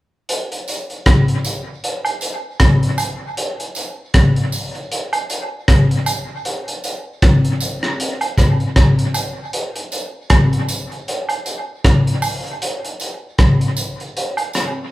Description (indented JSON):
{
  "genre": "reggae",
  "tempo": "78 BPM",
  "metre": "4/4",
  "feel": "swing 57% on 16ths",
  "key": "none",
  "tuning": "none",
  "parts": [
    { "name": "crunchy breakbeat drum kit", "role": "drums", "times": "0.3-14.8 s", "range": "hi-hat, kick drum, rim click", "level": "-16 LUFS", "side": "equal", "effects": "none" },
    { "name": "tambourine and woodblock", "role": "percussion", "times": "0.7-14.7 s", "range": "none", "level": "-25 LUFS", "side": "right 3 dB", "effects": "dub echo" }
  ],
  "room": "light reverb",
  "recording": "band playing live in one room",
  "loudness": "-16 LUFS",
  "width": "side -17 dB against mid",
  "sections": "0.3-12.6 A section; 12.6-14.9 B section",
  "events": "none",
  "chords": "none",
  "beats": "| 0.29 1.06 1.83 2.60 | 3.37 4.14 4.91 5.68 | 6.45 7.22 7.99 8.76 | 9.53 10.30 11.07 11.84 | 12.61 13.38 14.15"
}